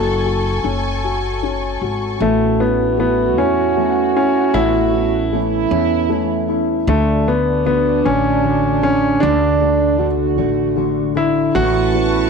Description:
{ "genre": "six-eight pop ballad", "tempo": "51 BPM (dotted quarters)", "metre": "6/8", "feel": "straight", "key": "A major", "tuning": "A4 = 440 Hz", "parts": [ { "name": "warm concert grand piano", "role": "melody", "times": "0.0-12.3 s", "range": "A3 to A4", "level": "-18 LUFS", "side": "left 1 dB", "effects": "none" }, { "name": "dark upright piano", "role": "accompaniment", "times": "0.0-12.3 s", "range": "D3 to F#4", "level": "-21 LUFS", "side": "left 10 dB", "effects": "none" }, { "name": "rich studio string section", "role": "sustained chords", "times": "0.0-2.2, 11.6-12.3 s", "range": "A4 to C#6", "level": "-24 LUFS", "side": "left 1 dB", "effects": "none" }, { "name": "upright bass", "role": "bass", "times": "0.0-12.3 s", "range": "F#1 to E2", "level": "-23 LUFS", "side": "right 1 dB", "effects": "none" }, { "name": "mellow French horn section", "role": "second line", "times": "2.2-12.3 s", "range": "D4 to F#4", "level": "-20 LUFS", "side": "right 12 dB", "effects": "none" }, { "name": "fingerpicked steel-string acoustic guitar", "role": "arpeggios", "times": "2.2-12.3 s", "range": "A2 to F#4", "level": "-25 LUFS", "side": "right 11 dB", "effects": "none" } ], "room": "moderate echo chamber reverb, RT60 1.6 s", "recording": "1960s-style stereo with parts hard left and right", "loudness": "-14 LUFS", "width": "side -5 dB against mid", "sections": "0.0-2.2 A section; 2.2-12.3 B section", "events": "none", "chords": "0.0 F#m; 2.2 Aadd9; 6.9 D; 11.6 Aadd9", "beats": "1.03 | 2.20 3.37 | 4.54 5.71 | 6.88 8.05 | 9.22 10.39 | 11.56" }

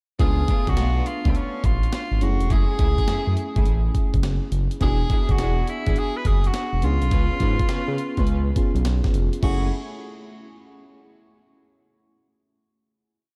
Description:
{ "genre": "R&B, new jack swing", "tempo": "104 BPM", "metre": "4/4", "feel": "swing 66% on 16ths", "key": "F# minor", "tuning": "A4 = 440 Hz", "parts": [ { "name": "bright tenor saxophone", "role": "melody", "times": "0.2-9.7 s", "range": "B#3 to B4", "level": "-32 LUFS", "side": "equal", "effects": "none" }, { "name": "FM electric piano", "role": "accompaniment", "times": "0.2-9.7 s", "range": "G#3 to E#5", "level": "-34 LUFS", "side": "equal", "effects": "chorus" }, { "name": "warm studio string section", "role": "stabs", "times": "0.2-9.7 s", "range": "A3 to B4", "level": "-36 LUFS", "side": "equal", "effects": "tape echo" }, { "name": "smooth gliding synth bass", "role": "bass", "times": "0.2-9.7 s", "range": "E1 to C#3", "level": "-25 LUFS", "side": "equal", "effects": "none" }, { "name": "breakbeat sampler-style drum kit", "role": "drums", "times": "0.2-9.6 s", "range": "crash cymbal, hi-hat, kick drum, snare drum", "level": "-25 LUFS", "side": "equal", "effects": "none" } ], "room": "light reverb, digital ambience", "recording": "none", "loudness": "-22 LUFS", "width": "mono", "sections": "0.2-9.4 verse; 9.4-11.7 final chord", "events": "none", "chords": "0.2 C#7b9b13; 2.2 F#m9; 4.8 E7; 6.8 C#7; 9.4 F#m9", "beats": "| 0.20 0.77 1.35 1.93 | 2.50 3.08 3.66 4.24 | 4.81 5.39 5.97 6.54 | 7.12 7.70 8.27 8.85 | 9.43" }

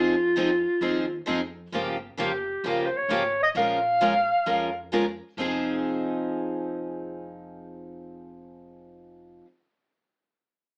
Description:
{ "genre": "acoustic string swing (jazz manouche)", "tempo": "132 BPM", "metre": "4/4", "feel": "swing 65% on 8ths", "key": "F minor", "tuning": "A4 = 440 Hz", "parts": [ { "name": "warm clarinet", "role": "melody", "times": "0.0-4.9 s", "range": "F4 to F5", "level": "-26 LUFS", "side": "equal", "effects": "none" }, { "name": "picked steel-string acoustic guitar", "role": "accompaniment", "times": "0.0-9.5 s", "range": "Db3 to Bb4", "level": "-31 LUFS", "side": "equal", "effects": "none" }, { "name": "picked steel-string acoustic guitar", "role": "accompaniment", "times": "0.0-9.5 s", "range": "Db3 to Bb4", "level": "-35 LUFS", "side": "equal", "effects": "none" }, { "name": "upright bass", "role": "bass", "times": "0.0-9.4 s", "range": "F1 to F2", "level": "-48 LUFS", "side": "equal", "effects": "none" } ], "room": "wet studio reverb, RT60 0.6 s", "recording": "AM radio sound", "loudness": "-26 LUFS", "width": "mono", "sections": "0.0-1.7 A section; 1.7-5.4 B section; 5.4-9.0 C section", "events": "none", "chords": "0.0 Fm7; 1.7 Gm7b5; 3.6 Bbm7; 5.4 Fm7", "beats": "0.37 0.82 1.28 | 1.73 2.19 2.64 3.10 | 3.55 4.01 4.46 4.92 | 5.37 5.82 6.28 6.73 | 7.19 7.64 8.10 8.55" }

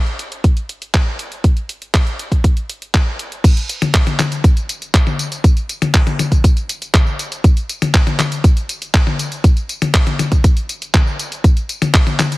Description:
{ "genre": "italo disco", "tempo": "120 BPM", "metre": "4/4", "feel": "straight", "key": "none", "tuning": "none", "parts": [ { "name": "detuned 8-bit digital drum machine", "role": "drums", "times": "0.1-12.4 s", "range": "crash cymbal, handclaps, hi-hat, tambourine, toms", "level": "-18 LUFS", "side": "left 2 dB", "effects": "none" }, { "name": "electronic kick drum", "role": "drums", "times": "0.4-12.0 s", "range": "none", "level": "-12 LUFS", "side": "equal", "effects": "none" } ], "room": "little or no reverb", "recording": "heavily compressed radio sound, multiband compression, faint mains hum", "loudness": "-13 LUFS", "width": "side -20 dB against mid", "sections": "0.0-3.4 A section; 3.4-12.4 B section", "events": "none", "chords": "none", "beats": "0.44 0.94 | 1.44 1.94 2.44 2.94 | 3.44 3.94 4.44 4.94 | 5.44 5.94 6.44 6.94 | 7.44 7.94 8.44 8.94 | 9.44 9.94 10.44 10.94 | 11.44 11.94" }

